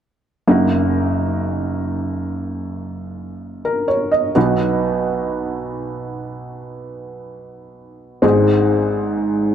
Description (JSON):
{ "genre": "pop", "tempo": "62 BPM", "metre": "4/4", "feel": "straight", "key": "F# major", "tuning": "A4 = 439 Hz", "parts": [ { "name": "felt-muted upright piano", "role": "accompaniment", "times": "0.5-9.5 s", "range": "F#1 to D#5", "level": "-17 LUFS", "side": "equal", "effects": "none" } ], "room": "moderate plate reverb, RT60 2.9 s", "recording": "dark, warm production", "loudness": "-16 LUFS", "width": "side -9 dB against mid", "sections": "0.5-9.5 A section", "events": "none", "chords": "0.5 F#6; 4.4 B; 8.2 G#" }